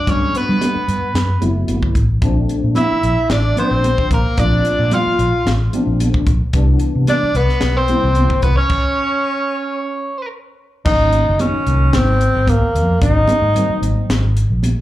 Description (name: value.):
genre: electric jazz fusion.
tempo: 111 BPM.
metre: 4/4.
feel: straight.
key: Ab mixolydian from 10.9 s.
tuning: A4 = 440 Hz.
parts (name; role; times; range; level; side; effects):
breathy tenor saxophone; melody; 0.0-14.1 s; Bb3 to F4; -18 LUFS; equal; slapback echo.
biting overdriven guitar; second line; 0.0-10.3 s; Bb4 to F5; -22 LUFS; right 2 dB; slapback echo.
tine electric piano; accompaniment; 0.1-14.3 s; Eb3 to F4; -23 LUFS; left 3 dB; ensemble chorus.
vintage muted fingered electric bass; bass; 0.1-14.7 s; F#1 to G3; -16 LUFS; equal; none.
crisp fusion drum kit; drums; 0.1-14.8 s; crash cymbal, hi-hat, kick drum, snare drum; -21 LUFS; equal; none.
congas; percussion; 0.1-14.8 s; none; -24 LUFS; right 2 dB; none.
room: small room ambience.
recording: live gig heard through the venue's PA, club reverb.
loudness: -13 LUFS.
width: side -14 dB against mid.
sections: 0.0-10.9 A section; 10.9-14.8 B section.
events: stop 8.7-10.9.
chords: 0.0 Gmaj9; 2.2 Bbmaj9; 6.5 Cmaj9; 8.7 N.C.; 10.9 Ab9sus4.